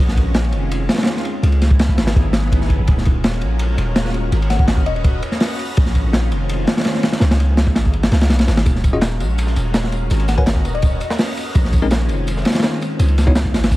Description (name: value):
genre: drum and bass, jungle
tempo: 166 BPM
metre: 4/4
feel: straight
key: Eb minor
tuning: A4 = 439 Hz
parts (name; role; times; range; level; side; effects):
- soft string machine; sustained chords; 0.0-13.8 s; Eb3 to Eb5; -26 LUFS; equal; ensemble chorus
- long sustained 808-style bass; bass; 0.0-13.8 s; Eb1 to Db2; -17 LUFS; equal; none
- crunchy breakbeat drum kit; drums; 0.1-13.8 s; hi-hat, kick drum, ride cymbal, snare drum; -17 LUFS; equal; none
- bell-like FM electric piano; melody; 4.5-5.0, 10.3-11.1 s; Eb5 to Gb5; -28 LUFS; left 7 dB; chorus, phaser, dub echo
- tambourine and snare drum; drums; 8.7-13.8 s; none; -31 LUFS; right 1 dB; high-pass filter on snare, high-pass filter on perc, high-pass filter on room
- bell-like tine electric piano; stabs; 8.9-13.3 s; Ab3 to Ab5; -25 LUFS; left 3 dB; slow stereo tremolo, dub echo
room: studio reverb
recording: vinyl crackle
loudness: -14 LUFS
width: side -17 dB against mid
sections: 0.0-13.8 A section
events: none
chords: 0.0 Bbm11; 1.4 Dbm11; 2.9 Ebm11; 4.3 Abm11; 5.8 Bbm11; 7.2 Dbm11; 8.7 Ebm11; 10.1 Abm11; 11.5 Bbm11; 13.0 Dbm11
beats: 0.34 0.71 1.07 | 1.43 1.79 2.15 2.51 | 2.88 3.24 3.60 3.96 | 4.32 4.68 5.04 5.41 | 5.77 6.13 6.49 6.85 | 7.21 7.57 7.93 8.30 | 8.66 9.02 9.38 9.74 | 10.10 10.46 10.83 11.19 | 11.55 11.91 12.27 12.63 | 12.99 13.36 13.72